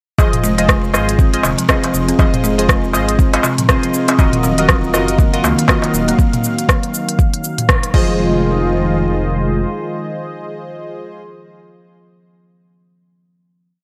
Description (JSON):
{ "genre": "afro house", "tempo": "120 BPM", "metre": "4/4", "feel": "swing 58% on 16ths", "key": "F phrygian", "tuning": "A4 = 442 Hz", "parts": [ { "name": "buzzing kalimba", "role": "arpeggios", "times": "0.2-8.4 s", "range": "C3 to C4", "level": "-22 LUFS", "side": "equal", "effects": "sidechain pumping, delay" }, { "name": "warm analog keys", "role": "stabs", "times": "0.2-11.2 s", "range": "F4 to Eb5", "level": "-23 LUFS", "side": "equal", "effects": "chorus, phaser, sidechain pumping, delay" }, { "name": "dark detuned saw bass", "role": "bass", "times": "0.2-9.6 s", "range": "Eb1 to Db2", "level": "-23 LUFS", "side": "equal", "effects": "sidechain pumping" }, { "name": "deep house drum kit", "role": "drums", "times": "0.2-8.1 s", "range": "cabasa, crash cymbal, hi-hat, rim click, toms", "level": "-20 LUFS", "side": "equal", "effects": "none" }, { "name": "electronic kick drum", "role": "drums", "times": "0.2-8.1 s", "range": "none", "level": "-16 LUFS", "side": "equal", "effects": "none" }, { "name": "darbuka", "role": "percussion", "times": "0.2-5.9 s", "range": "none", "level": "-23 LUFS", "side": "equal", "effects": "none" }, { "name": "warm analog pad", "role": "sustained chords", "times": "4.2-11.2 s", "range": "Eb3 to F5", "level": "-24 LUFS", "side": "equal", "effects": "chorus, sidechain pumping" } ], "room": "light reverb", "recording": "none", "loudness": "-15 LUFS", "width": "mono", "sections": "0.2-8.2 groove; 8.2-12.2 final hit", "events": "band accent 7.7", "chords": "0.2 Fm7; 4.2 Ebmadd9; 7.9 Fm7", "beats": "| 0.19 0.69 1.19 1.69 | 2.19 2.69 3.19 3.69 | 4.19 4.69 5.19 5.69 | 6.19 6.69 7.19 7.69 | 8.19 8.69 9.19 9.69 | 10.19 10.69 11.19" }